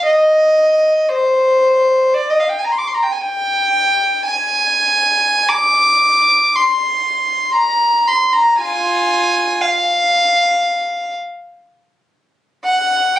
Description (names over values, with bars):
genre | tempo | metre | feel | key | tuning
classical, free, expressive piece for unaccompanied violin | 45-61 BPM | 4/4 | rubato | C minor | A4 = 440 Hz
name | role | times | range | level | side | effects
dark violin | solo | 0.0-13.2 s | F4 to D6 | -12 LUFS | equal | none
room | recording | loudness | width
moderate studio reverb, RT60 0.6 s | recorded on a phone in the room, club reverb | -12 LUFS | side -13 dB against mid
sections
0.0-13.2 A section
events
none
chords
none